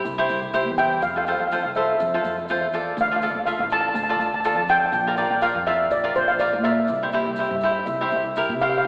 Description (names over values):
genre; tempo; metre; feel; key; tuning
calypso; 123 BPM; 4/4; swing 54% on 16ths; unclear; A4 = 440 Hz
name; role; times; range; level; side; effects
cavaquinho; accompaniment; 0.0-8.8 s; E4 to E5; -27 LUFS; equal; none
upright bass; bass; 0.0-8.9 s; A1 to C3; -33 LUFS; equal; none
egg shaker; percussion; 0.1-8.8 s; none; -54 LUFS; equal; none
steel pan; melody; 0.8-8.9 s; C5 to A5; -24 LUFS; equal; none
room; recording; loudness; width
wet concert hall reverb, RT60 2.5 s; heard from further back in the room, AM radio sound; -22 LUFS; mono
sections
0.0-8.8 A section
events
none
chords
0.0 C; 1.0 Fmaj7; 3.0 Dm; 4.9 Bb; 6.9 C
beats
0.05 0.54 | 1.02 1.51 2.00 2.49 | 2.98 3.47 3.96 4.45 | 4.94 5.42 5.91 6.40 | 6.89 7.38 7.87 8.36 | 8.85